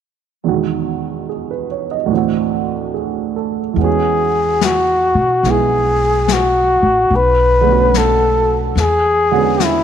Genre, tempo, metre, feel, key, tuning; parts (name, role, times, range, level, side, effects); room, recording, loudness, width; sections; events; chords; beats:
jazz ballad; 72 BPM; 4/4; swing 66% on 8ths; E major; A4 = 439 Hz
dark baby grand piano; accompaniment; 0.4-9.8 s; D2 to D#5; -19 LUFS; right 11 dB
mellow flugelhorn; melody; 3.8-9.8 s; E4 to B4; -13 LUFS; left 1 dB
upright bass; bass; 3.8-9.8 s; A1 to B2; -19 LUFS; left 2 dB
jazz brush drum kit; drums; 3.8-9.8 s; brushed snare drum, hi-hat, snare drum; -23 LUFS; left 10 dB
moderate echo chamber reverb, RT60 2.5 s; 1960s-style stereo with parts hard left and right; -13 LUFS; side -8 dB against mid
0.4-3.8 A section; 3.8-9.8 B section
0.4 Emaj9; 2.1 D9; 3.8 E69; 7.1 Bm7; 8.8 E13
| 0.44 1.28 2.10 2.93 | 3.76 4.60 5.43 6.27 | 7.10 7.93 8.76 9.59